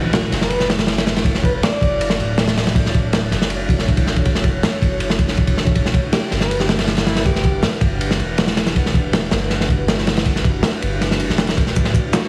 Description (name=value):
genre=drum and bass, jungle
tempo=160 BPM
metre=4/4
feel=straight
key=E dorian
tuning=A4 = 439 Hz
part: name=ethereal airy pad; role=sustained chords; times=0.0-12.3 s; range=D4 to F#5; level=-30 LUFS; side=equal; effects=ensemble chorus, built-in reverb
part: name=impact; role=sound effects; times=0.0-1.3 s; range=none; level=-30 LUFS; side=equal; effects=none
part: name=raspy alto saxophone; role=melody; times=0.1-2.2, 6.1-7.6, 12.1-12.3 s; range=E4 to D5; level=-28 LUFS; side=equal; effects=dub echo
part: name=crunchy breakbeat drum kit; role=drums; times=0.1-12.2 s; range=kick drum, ride cymbal, snare drum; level=-19 LUFS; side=equal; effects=none
part: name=soft dub sub bass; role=bass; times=0.3-11.9 s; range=D1 to G1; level=-25 LUFS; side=equal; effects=none
part: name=electronic shaker and snare drum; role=drums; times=11.8-12.2 s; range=none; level=-28 LUFS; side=equal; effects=high-pass filter on perc, high-pass filter on snare
room=light reverb, small room ambience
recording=heavily compressed radio sound, studio reverb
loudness=-18 LUFS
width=mono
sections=0.0-12.3 A section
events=impact 0.0-1.3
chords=0.0 Dmaj7; 5.8 Em7; 11.8 Dmaj7